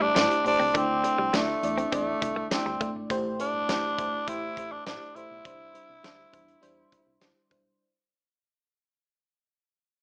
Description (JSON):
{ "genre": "1980s-style pop", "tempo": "102 BPM", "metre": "4/4", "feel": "straight", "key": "unclear", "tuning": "A4 = 440 Hz", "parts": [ { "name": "raspy tenor saxophone", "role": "melody", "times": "0.0-7.2 s", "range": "A3 to E4", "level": "-30 LUFS", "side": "equal", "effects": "plate reverb" }, { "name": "FM electric piano with soft pad layer", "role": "accompaniment", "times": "0.0-7.8 s", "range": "A2 to D5", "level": "-35 LUFS", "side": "equal", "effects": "chorus, phaser, plate reverb" }, { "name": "direct-recorded clean electric guitar", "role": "riff", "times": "0.0-2.9 s", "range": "G3 to D4", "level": "-36 LUFS", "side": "equal", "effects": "subtle chorus" }, { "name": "solid FM bass", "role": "bass", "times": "0.0-7.7 s", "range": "G1 to A2", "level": "-45 LUFS", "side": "equal", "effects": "none" }, { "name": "big rock drum kit", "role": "drums", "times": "0.2-7.6 s", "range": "hi-hat, kick drum, snare drum", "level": "-33 LUFS", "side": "equal", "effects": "none" } ], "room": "wet booth ambience, RT60 0.2 s", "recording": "small speaker sound", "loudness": "-27 LUFS", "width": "mono", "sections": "0.0-7.8 A section", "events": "fade-out 0.0-7.8", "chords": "0.0 Am7; 0.7 Dsus2; 3.1 Am7; 5.5 Cadd9" }